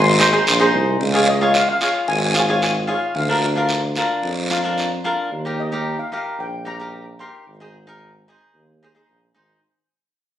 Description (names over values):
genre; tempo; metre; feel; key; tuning
calypso; 111 BPM; 4/4; swing 53% on 16ths; Db major; A4 = 440 Hz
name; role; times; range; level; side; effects
steel pan; melody; 0.0-9.0 s; Eb5 to C6; -23 LUFS; left 2 dB; none
warm tuba; bass; 0.0-9.6 s; Ab1 to F2; -21 LUFS; right 1 dB; none
cavaquinho; accompaniment; 0.2-9.6 s; D4 to Db5; -20 LUFS; equal; none
guiro; percussion; 0.2-4.9 s; none; -22 LUFS; right 2 dB; none
room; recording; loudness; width
light reverb; recorded on a phone in the room, studio reverb; -16 LUFS; side -11 dB against mid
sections
0.0-1.0 A section; 1.0-9.6 B section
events
fade-out 1.0-9.6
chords
0.0 Ab; 1.0 Db; 3.2 Bb/D; 5.3 Eb; 7.5 Ab